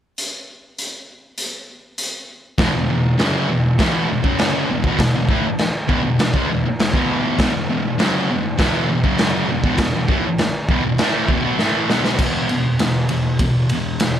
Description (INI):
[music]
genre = garage rock duo or trio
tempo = 100 BPM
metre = 4/4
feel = straight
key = unclear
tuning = A4 = 440 Hz
[part]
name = raw garage drum kit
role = drums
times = 0.2-14.1 s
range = crash cymbal, hi-hat, kick drum, ride cymbal, snare drum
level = -20 LUFS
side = equal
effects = none
[part]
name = thick fuzz guitar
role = riff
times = 2.6-14.2 s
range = E2 to B3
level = -18 LUFS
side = equal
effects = distortion
[sound]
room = light reverb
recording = none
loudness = -16 LUFS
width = side -10 dB against mid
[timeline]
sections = 0.2-2.6 A section; 2.6-12.2 B section; 12.2-14.2 C section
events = drum fill 11.6-12.2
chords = 0.2 N.C.; 2.6 E5